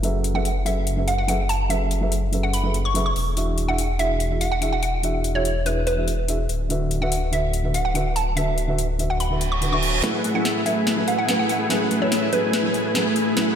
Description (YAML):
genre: future bass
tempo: 144 BPM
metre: 4/4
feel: half-time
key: F# minor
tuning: A4 = 440 Hz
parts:
  - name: felt-muted upright piano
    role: accompaniment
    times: 0.0-13.6 s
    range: D3 to F#5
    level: -26 LUFS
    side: right 2 dB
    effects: vintage 12-bit sampler grit, tape echo
  - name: wide detuned saw bass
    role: bass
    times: 0.0-13.6 s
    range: D1 to F#1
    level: -25 LUFS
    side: equal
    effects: chorus, high-pass filter
  - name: trap drum kit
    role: drums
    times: 0.0-13.5 s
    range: hi-hat, snare drum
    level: -28 LUFS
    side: left 3 dB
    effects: overdrive
  - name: downlifter and reverse cymbal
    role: sound effects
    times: 0.0, 9.4-10.0 s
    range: none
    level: -27 LUFS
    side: right 4 dB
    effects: none
  - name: hollow square pluck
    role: melody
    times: 0.3-13.0 s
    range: B4 to C#6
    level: -26 LUFS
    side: right 1 dB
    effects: chorus, tape echo
  - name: dense compressed supersaw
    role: riff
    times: 10.0-13.6 s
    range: A3 to G#5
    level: -22 LUFS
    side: equal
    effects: low-pass filter, tape echo
room: moderate lush hall reverb, RT60 2.0 s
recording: dreamy mix soaked in reverb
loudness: -20 LUFS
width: side -8 dB against mid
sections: 0.0-10.0 A section; 10.0-13.6 B section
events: reverse cymbal 9.4-10.0; build-up 10.0-13.6; drum fill 10.0-13.6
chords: 0.0 F#m11; 3.2 E7; 6.5 D6; 10.0 F#m11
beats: | 0.04 0.45 0.87 1.28 | 1.70 2.12 2.54 2.95 | 3.37 3.79 4.20 4.62 | 5.04 5.45 5.87 6.29 | 6.70 7.12 7.54 7.95 | 8.37 8.79 9.20 9.62 | 10.04 10.45 10.87 11.29 | 11.70 12.12 12.54 12.95 | 13.37